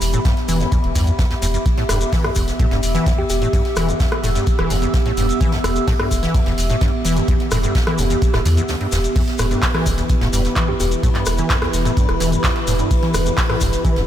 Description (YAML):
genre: acid house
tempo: 128 BPM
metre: 4/4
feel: straight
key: unclear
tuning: A4 = 440 Hz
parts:
  - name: warm sub bass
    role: bass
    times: 0.0-14.0 s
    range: E1 to E2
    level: -21 LUFS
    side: equal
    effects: tube saturation, sidechain pumping
  - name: jazz brush drum kit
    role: drums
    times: 0.0-14.1 s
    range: hi-hat, ride cymbal, snare drum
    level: -33 LUFS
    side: equal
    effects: sidechain pumping on cymbals, high-pass filter on cymbals, sidechain pumping on hats, high-pass filter on hats, high-pass filter on snare, high-pass filter on room
  - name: punchy analog drum machine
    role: drums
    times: 0.0-14.1 s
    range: crash cymbal, handclaps, hi-hat, rim click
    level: -25 LUFS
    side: equal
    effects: none
  - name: shekere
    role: percussion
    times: 0.0-13.9 s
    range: none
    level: -31 LUFS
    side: left 5 dB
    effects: none
  - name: warbly tape-like pad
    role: texture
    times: 0.0-14.1 s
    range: B3 to E6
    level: -24 LUFS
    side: right 1 dB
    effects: chorus, built-in reverb, sidechain pumping
  - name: deep acid bass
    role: riff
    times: 0.1-14.0 s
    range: D2 to E3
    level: -23 LUFS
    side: equal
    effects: tube saturation, analog chorus, cassette tape, analog delay
  - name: electronic kick drum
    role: drums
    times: 0.3-13.9 s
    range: none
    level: -19 LUFS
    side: equal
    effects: none
  - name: thumb-piano-like synth pluck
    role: melody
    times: 3.2-3.4, 10.7-10.9 s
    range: G4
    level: -29 LUFS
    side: left 1 dB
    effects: chorus, tape echo
  - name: warbly tape-like pad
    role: sustained chords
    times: 9.6-14.1 s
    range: E3 to B4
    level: -25 LUFS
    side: right 1 dB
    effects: chorus, built-in reverb, sidechain pumping
room: moderate lush hall reverb, RT60 2.0 s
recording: dreamy mix soaked in reverb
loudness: -16 LUFS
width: side -11 dB against mid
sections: 0.0-14.1 A section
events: break 8.7-9.2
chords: 0.0 Em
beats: 0.25 0.72 1.19 | 1.66 2.13 2.60 3.06 | 3.53 4.00 4.47 4.94 | 5.41 5.88 6.35 6.81 | 7.28 7.75 8.22 8.69 | 9.16 9.63 10.10 10.56 | 11.03 11.50 11.97 12.44 | 12.91 13.38 13.85